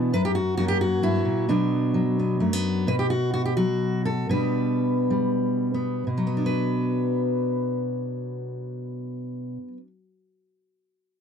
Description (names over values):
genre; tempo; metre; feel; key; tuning
folk, solo fingerstyle acoustic guitar; 85-132 BPM; 3/4; straight; B minor; A4 = 443 Hz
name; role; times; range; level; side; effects
fingerpicked steel-string acoustic guitar; solo; 0.0-9.9 s; F#2 to B4; -22 LUFS; equal; none
room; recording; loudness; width
moderate booth ambience, RT60 0.2 s; dry, close 1970s-style studio recording; -22 LUFS; side -7 dB against mid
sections
0.0-2.9 A section; 2.9-6.1 B section; 6.1-10.3 C section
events
slowing down 2.9-6.1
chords
0.1 N.C.; 0.6 F#; 1.5 Bm; 2.9 B5; 4.3 G/B; 6.1 Bm